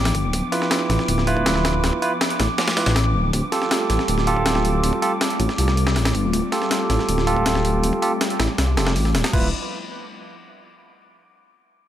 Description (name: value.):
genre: drum and bass, jungle.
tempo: 160 BPM.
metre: 4/4.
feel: straight.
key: D dorian.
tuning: A4 = 440 Hz.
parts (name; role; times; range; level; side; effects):
airy breathy pad; sustained chords; 0.0-9.5 s; F3 to G5; -28 LUFS; left 1 dB; chorus, vintage 12-bit sampler grit.
dark detuned saw bass; bass; 0.0-9.5 s; D1 to C2; -21 LUFS; equal; none.
wind-like tuned noise texture; texture; 0.0-9.3 s; D6; -30 LUFS; equal; built-in reverb.
breakbeat sampler-style drum kit; drums; 0.1-9.4 s; crash cymbal, hi-hat, kick drum, snare drum; -24 LUFS; equal; high-pass filter on kick, high-pass filter on hats, high-pass filter on snare, high-pass filter on cymbals.
barky tine electric piano; stabs; 0.5-9.5 s; E4 to B4; -24 LUFS; right 3 dB; vintage 12-bit sampler grit, low-pass filter, dub echo.
room: light reverb.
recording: none.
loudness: -18 LUFS.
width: side -11 dB against mid.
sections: 0.0-9.3 A section; 9.3-10.8 B section.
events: none.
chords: 0.0 Dm69; 3.3 Fadd9/D; 9.3 Dm69.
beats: | 0.34 0.71 1.08 1.46 | 1.83 2.21 2.58 2.96 | 3.33 3.71 4.08 4.46 | 4.83 5.21 5.58 5.96 | 6.33 6.71 7.08 7.46 | 7.83 8.21 8.59 8.96 | 9.34.